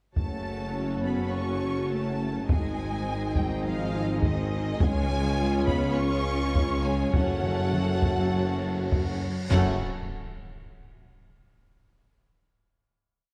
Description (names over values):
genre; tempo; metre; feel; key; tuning
cinematic, epic orchestral film score; 103 BPM; 4/4; straight; F# harmonic minor; A4 = 440 Hz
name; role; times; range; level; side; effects
warm symphonic violin section; melody; 0.2-9.8 s; D#5 to C#6; -39 LUFS; equal; none
rich symphonic violin section; second line; 0.2-9.8 s; G#4 to D#5; -40 LUFS; equal; none
warm symphonic viola section; accompaniment; 0.2-9.8 s; B#3 to F#4; -37 LUFS; equal; none
clear trombone section; sustained chords; 0.2-9.8 s; C#3 to A3; -41 LUFS; equal; none
warm French horn section; sustained chords; 0.2-9.8 s; B#3 to F#4; -39 LUFS; equal; none
clear symphonic double bass section; bass; 0.2-9.8 s; F#1 to F#2; -34 LUFS; equal; none
mellow tuba; bass; 0.2-9.8 s; F#1 to C#2; -36 LUFS; equal; none
rich symphonic cello section; bass; 0.2-9.8 s; D#3 to C#4; -36 LUFS; equal; none
solo taiko drums; drums; 0.2-9.7 s; none; -30 LUFS; equal; none
cymbal swell and impact; sound effects; 8.6-11.8 s; none; -42 LUFS; equal; none
room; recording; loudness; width
moderate scoring stage reverb, RT60 2.0 s; dark, warm production, faint mains hum; -27 LUFS; mono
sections
0.2-9.5 theme; 9.5-11.8 final chord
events
cymbal swell 8.6-9.5; impact 9.5-11.8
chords
0.2 F#m; 2.5 G#; 4.8 C#; 7.1 F#m; 9.5 F#5